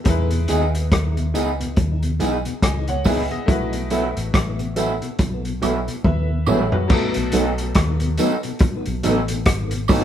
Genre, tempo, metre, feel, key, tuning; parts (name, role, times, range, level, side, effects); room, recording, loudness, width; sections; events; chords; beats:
lovers rock reggae; 70 BPM; 4/4; swing 59% on 16ths; A4 = 440 Hz
bright grand piano; accompaniment; 0.0-10.0 s; F#3 to G#5; -28 LUFS; left 1 dB
vintage muted fingered electric bass; bass; 0.1-10.0 s; G#1 to E2; -23 LUFS; left 1 dB
vintage drum kit; drums; 0.1-10.0 s; crash cymbal, hi-hat, kick drum, rim click, toms; -20 LUFS; equal
mellow tonewheel organ; accompaniment; 0.3-10.0 s; E2 to D#4; -28 LUFS; left 2 dB; overdrive, chorus vibrato, slow rotary speaker, tape echo
electric guitar through a small old amp; stabs; 0.5-10.0 s; E3 to A4; -22 LUFS; right 3 dB; harmonic tremolo
tambourine and woodblock; percussion; 0.5-10.0 s; -32 LUFS; right 8 dB
moderate stone room reverb, RT60 1.0 s; band playing live in one room; -18 LUFS; side -10 dB against mid
0.0-6.9 A section; 6.9-10.0 B section
drum fill 6.0-6.9
0.1 Emaj7; 3.5 B7sus4; 6.9 B7
| 0.06 0.92 1.77 2.63 | 3.48 4.34 5.19 6.05 | 6.90 7.76 8.61 9.46